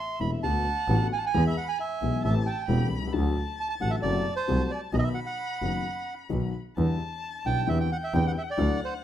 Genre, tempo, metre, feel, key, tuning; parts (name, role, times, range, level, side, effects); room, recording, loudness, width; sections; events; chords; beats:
tango; 133 BPM; 4/4; rubato; E minor; A4 = 436 Hz
bandoneon; melody; 0.0-8.9 s; C5 to C6; -30 LUFS; right 5 dB; slapback echo
warm violin; second line; 0.0-9.0 s; E5 to B5; -38 LUFS; left 5 dB
dark concert grand piano; accompaniment; 0.2-8.8 s; E1 to G#4; -30 LUFS; left 6 dB
warm double bass; bass; 0.2-8.8 s; E1 to E2; -27 LUFS; right 1 dB
small room reverb; rough home demo mix; -25 LUFS; side -11 dB against mid
0.0-9.0 A section
0.4 D6; 1.3 E; 2.2 Am7; 3.1 D; 4.0 F#dim; 4.9 B; 6.8 Em7; 7.7 Cadd9/E
0.43 0.89 | 1.34 1.79 2.24 2.69 | 3.14 3.58 4.03 4.49 | 4.94 5.39 5.85 6.31 | 6.77 7.23 7.68 8.13 | 8.58 9.04